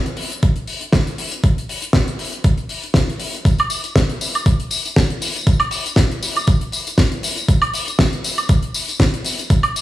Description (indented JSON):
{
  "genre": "nu-disco",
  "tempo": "119 BPM",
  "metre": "4/4",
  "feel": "swing 55% on 16ths",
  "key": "none",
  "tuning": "none",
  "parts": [
    { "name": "damped 70s drum kit", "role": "drums", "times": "0.1-9.8 s", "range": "hi-hat, snare drum, tambourine, woodblock", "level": "-20 LUFS", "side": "equal", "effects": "none" },
    { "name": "electronic kick drum", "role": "drums", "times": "0.4-9.6 s", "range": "none", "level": "-15 LUFS", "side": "equal", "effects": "overdrive" }
  ],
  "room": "light reverb",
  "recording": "dry, gritty hardware recording, transformer saturation, studio reverb",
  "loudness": "-16 LUFS",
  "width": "side -15 dB against mid",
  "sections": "0.0-9.8 A section",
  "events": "none",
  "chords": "none",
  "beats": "0.43 0.93 | 1.44 1.94 2.44 2.95 | 3.45 3.96 4.46 4.97 | 5.47 5.97 6.48 6.98 | 7.49 7.99 8.50 9.00 | 9.50"
}